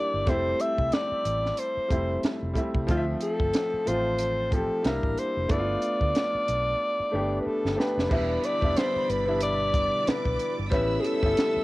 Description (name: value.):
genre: lush 1970s-style soul.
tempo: 92 BPM.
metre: 4/4.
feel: swing 58% on 16ths.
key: unclear.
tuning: A4 = 440 Hz.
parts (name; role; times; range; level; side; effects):
mellow alto saxophone; melody; 0.0-11.6 s; F4 to E5; -27 LUFS; left 1 dB; cassette tape.
clear baby grand piano; accompaniment; 0.0-11.6 s; F3 to E5; -30 LUFS; equal; cassette tape.
vintage muted fingered electric bass; bass; 0.1-11.6 s; E1 to D2; -32 LUFS; equal; none.
compact cocktail drum kit; drums; 0.3-11.6 s; crash cymbal, hi-hat, kick drum, snare drum; -28 LUFS; right 1 dB; cassette tape.
warm symphonic violin section; second line; 8.1-11.6 s; D5 to E6; -38 LUFS; right 2 dB; cassette tape.
string machine, full ensemble; sustained chords; 8.1-11.6 s; B2 to E4; -37 LUFS; right 1 dB; phaser, ensemble chorus, cassette tape.
celesta; texture; 8.1-11.4 s; C#5 to E5; -38 LUFS; right 2 dB; none.
room: light reverb, small room ambience.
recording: home recording on cassette.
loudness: -24 LUFS.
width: side -19 dB against mid.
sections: 0.0-8.1 A section; 8.1-11.6 B section.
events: drum fill 6.8-8.1.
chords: 0.3 Fmaj7; 2.9 Dm9; 4.8 C9; 5.5 G7; 8.1 Em7; 10.7 A7.